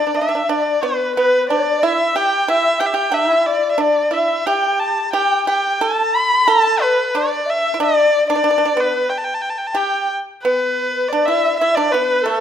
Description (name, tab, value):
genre	chinese traditional, Chinese chamber ensemble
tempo	90 BPM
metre	2/4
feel	rubato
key	G gong mode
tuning	A4 = 444 Hz
part	rich erhu	melody	0.0-12.4 s	A4 to B5	-18 LUFS	equal	none
part	mellow large dizi	second line	0.0-12.4 s	A4 to B5	-19 LUFS	left 4 dB	none
part	pipa	second line	0.0-12.4 s	A3 to A4	-21 LUFS	right 5 dB	none
room	moderate recital hall reverb, RT60 1.2 s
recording	none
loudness	-15 LUFS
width	side -9 dB against mid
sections	0.0-10.4 A section; 10.4-12.4 B section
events	none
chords	none